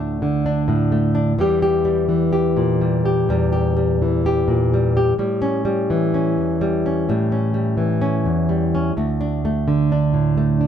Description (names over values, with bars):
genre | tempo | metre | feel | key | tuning
folk | 63 BPM | 4/4 | straight | unclear | A4 = 440 Hz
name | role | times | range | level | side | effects
nylon-string guitar | solo | 0.0-10.7 s | D2 to G4 | -17 LUFS | equal | none
room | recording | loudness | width
little or no reverb | none | -17 LUFS | side -9 dB against mid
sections
0.0-10.7 A section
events
none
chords
0.0 D5; 1.4 Edim; 5.2 A7; 9.0 D5